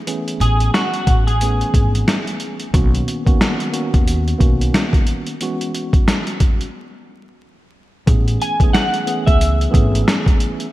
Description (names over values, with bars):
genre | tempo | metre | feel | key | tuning
hip hop, boom-bap hip-hop | 90 BPM | 4/4 | swing 59% on 16ths | unclear | A4 = 440 Hz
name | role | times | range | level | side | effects
mellow tine electric piano | accompaniment | 0.1-10.7 s | D#3 to G#4 | -23 LUFS | right 1 dB | medium stereo tremolo, cassette tape, high-pass filter, low-pass filter
boom bap sampler-style drum kit | drums | 0.1-10.7 s | hi-hat, kick drum, snare drum | -16 LUFS | equal | gated reverb
electric guitar at the edge of break-up | melody | 0.4-2.7, 8.4-10.2 s | F#4 to G#5 | -22 LUFS | equal | analog chorus, high-pass filter, low-pass filter, ping-pong delay
upright bass | bass | 0.4-10.0 s | G#1 to D#2 | -18 LUFS | equal | none
room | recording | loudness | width
light reverb, digital ambience | bright 1980s-style digital production, vinyl crackle | -14 LUFS | side -16 dB against mid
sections
0.0-8.1 A section; 8.1-10.7 B section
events
break 5.4-8.1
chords
0.0 Amaj9; 2.7 Bmaj9; 5.4 E69; 8.1 Amaj9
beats
| 0.07 0.74 1.41 2.07 | 2.74 3.40 4.07 4.74 | 5.41 6.07 6.74 7.41 | 8.07 8.74 9.40 10.07